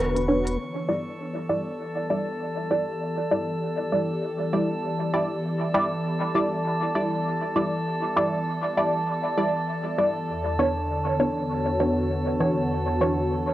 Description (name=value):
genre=ambient dub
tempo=99 BPM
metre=4/4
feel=swing 58% on 16ths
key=E dorian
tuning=A4 = 440 Hz
part: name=warm analog pad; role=sustained chords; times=0.0-13.5 s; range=E2 to D5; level=-28 LUFS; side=equal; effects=chorus
part: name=warm sub bass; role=bass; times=0.0-0.6 s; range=E1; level=-29 LUFS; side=equal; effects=none
part: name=drifting glass-harmonics texture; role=texture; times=0.0-13.5 s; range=A4 to C#6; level=-31 LUFS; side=right 1 dB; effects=chorus, built-in reverb
part: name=electronic hi-hat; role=drums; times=0.2-0.6 s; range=none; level=-33 LUFS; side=right 1 dB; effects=cassette tape, dub echo
part: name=filtered dub chord stab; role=stabs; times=0.3-13.2 s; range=E3 to D5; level=-26 LUFS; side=equal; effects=phaser, dub echo
room=light reverb, digital ambience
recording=home recording on cassette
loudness=-23 LUFS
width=side -14 dB against mid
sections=0.6-13.5 A section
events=filter sweep on analog synth pad 0.6-13.5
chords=0.0 Bmadd9; 0.6 Em7; 10.3 Bmadd9/E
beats=| 0.59 1.20 1.80 2.41 | 3.02 3.62 4.23 4.83 | 5.44 6.05 6.65 7.26 | 7.87 8.47 9.08 9.68 | 10.29 10.90 11.50 12.11 | 12.71 13.32